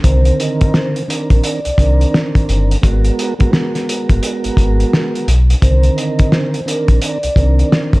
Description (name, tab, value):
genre	hip hop, boom-bap hip-hop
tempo	86 BPM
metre	4/4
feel	swing 62% on 16ths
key	unclear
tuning	A4 = 440 Hz
part	vibraphone with soft mallets	melody	0.0-7.7 s	Bb4 to Eb5	-22 LUFS	equal	none
part	mellow tonewheel organ	accompaniment	0.0-8.0 s	D3 to Bb4	-19 LUFS	right 2 dB	slow rotary speaker
part	sub bass with octave	bass	0.0-7.6 s	G1 to C2	-12 LUFS	equal	none
part	cloth-damped thuddy drum kit	drums	0.0-8.0 s	hi-hat, kick drum, snare drum	-15 LUFS	equal	vintage 12-bit sampler grit
room	small room ambience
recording	none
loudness	-12 LUFS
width	side -22 dB against mid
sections	0.0-8.0 A section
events	none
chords	0.0 Cm9; 2.8 Abm9; 5.6 Cm9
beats	| 0.04 0.74 1.44 2.13 | 2.83 3.53 4.23 4.92 | 5.62 6.32 7.02 7.71